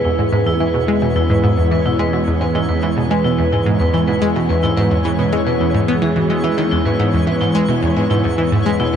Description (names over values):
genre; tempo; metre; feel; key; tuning
ambient, sequencer-driven space music; 108 BPM; 4/4; straight; E major; A4 = 440 Hz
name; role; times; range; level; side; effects
phased string machine; sustained chords; 0.0-9.0 s; E3 to Cb5; -20 LUFS; right 1 dB; ensemble chorus, phaser
vibraphone with hard mallets; arpeggios; 0.0-9.0 s; E4 to B4; -20 LUFS; left 1 dB; auto-pan, tape echo
analog pluck; riff; 0.0-9.0 s; E2 to B3; -17 LUFS; equal; chorus, phaser, tape echo
analog drone; bass; 0.0-9.0 s; E2; -27 LUFS; equal; chorus, phaser
twinkling granular texture; texture; 0.0-9.0 s; C#4 to C#5; -28 LUFS; left 1 dB; built-in reverb
room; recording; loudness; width
wet huge ambient reverb, RT60 7.2 s; dark, warm production; -14 LUFS; side -8 dB against mid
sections
0.0-9.0 A section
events
none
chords
0.0 E